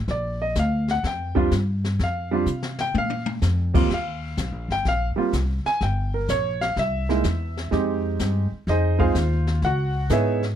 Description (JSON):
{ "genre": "jazz piano trio", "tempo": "126 BPM", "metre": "4/4", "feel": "swing 68% on 8ths", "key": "Bb major, Eb major from 3.9 s", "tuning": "A4 = 440 Hz", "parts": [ { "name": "upright bass", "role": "bass", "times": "0.0-10.6 s", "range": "G1 to C3", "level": "-24 LUFS", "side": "left 1 dB", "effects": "none" }, { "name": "clear grand piano", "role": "melody", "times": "0.1-10.4 s", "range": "Eb2 to Ab5", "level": "-24 LUFS", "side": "right 2 dB", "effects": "none" }, { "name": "jazz brush drum kit", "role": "drums", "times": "0.1-10.6 s", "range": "brushed snare drum, crash cymbal, hi-hat, kick drum, snare drum, toms", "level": "-28 LUFS", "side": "left 3 dB", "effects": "none" } ], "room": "little or no reverb", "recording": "dark, warm production", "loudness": "-21 LUFS", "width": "side -10 dB against mid", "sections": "0.0-3.9 A section; 3.9-10.6 A section", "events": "grand piano solo 0.0-10.6; drum fill 2.5-3.4", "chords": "0.1 Bb6; 2.9 Bb5; 3.9 Eb69; 5.8 Gdim; 6.8 C; 7.7 Fm9; 9.6 Dbm7", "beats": "| 0.07 0.55 1.03 1.51 | 1.99 2.46 2.94 3.42 | 3.90 4.37 4.85 5.33 | 5.81 6.28 6.76 7.24 | 7.71 8.19 8.67 9.15 | 9.62 10.10" }